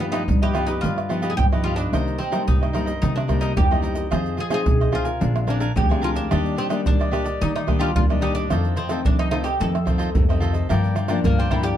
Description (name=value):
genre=samba and choro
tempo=110 BPM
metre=4/4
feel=straight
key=unclear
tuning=A4 = 440 Hz
part: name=oud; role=melody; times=0.0-11.8 s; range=Bb3 to A4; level=-28 LUFS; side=equal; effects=none
part: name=cavaquinho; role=accompaniment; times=0.0-11.8 s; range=D4 to Ab5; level=-29 LUFS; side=right 1 dB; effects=none
part: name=nylon-string guitar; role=accompaniment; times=0.0-11.8 s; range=F2 to Ab4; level=-26 LUFS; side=left 4 dB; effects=none
part: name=pandeiro, tube shaker, tamborim and surdo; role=percussion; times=0.0-11.8 s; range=none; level=-22 LUFS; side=right 1 dB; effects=none
part: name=upright bass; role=bass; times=0.3-11.7 s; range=Bb1 to G3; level=-25 LUFS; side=left 1 dB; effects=none
room=moderate studio reverb, RT60 0.7 s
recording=dark, warm production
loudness=-19 LUFS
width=side -10 dB against mid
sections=0.0-10.7 A section; 10.7-11.8 B section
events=oud solo 10.7-11.8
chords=0.0 Gaug7; 1.9 Cm7; 4.1 Fm7; 5.2 Bb9; 6.3 Ebmaj7; 8.5 F7; 10.7 Gm7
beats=0.28 0.83 1.38 | 1.93 2.48 3.02 3.57 | 4.12 4.67 5.22 5.77 | 6.32 6.87 7.41 7.96 | 8.51 9.06 9.60 10.15 | 10.70 11.24